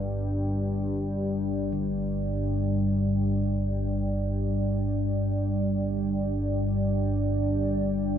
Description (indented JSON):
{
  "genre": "dark ambient drone",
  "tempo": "free time",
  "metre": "none",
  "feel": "none",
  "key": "unclear",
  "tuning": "A4 = 440 Hz",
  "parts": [
    { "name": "deep dark ambient pad", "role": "sustained chords", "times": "0.0-8.2 s", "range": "G3 to G5", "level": "-29 LUFS", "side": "equal", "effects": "chorus, built-in reverb" },
    { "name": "gamelan-type bossed gongs", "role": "arpeggios", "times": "0.0-8.2 s", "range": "G2 to D3", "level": "-43 LUFS", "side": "right 2 dB", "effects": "none" },
    { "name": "analog drone", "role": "drone", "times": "0.0-8.2 s", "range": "G1 to G2", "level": "-27 LUFS", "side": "equal", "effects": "chorus" }
  ],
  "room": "moderate huge ambient reverb, RT60 7.5 s",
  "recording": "none",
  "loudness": "-25 LUFS",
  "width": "side -9 dB against mid",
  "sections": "0.0-8.2 A section",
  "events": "filter sweep on synth drone 0.0-8.2",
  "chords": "0.0 G5"
}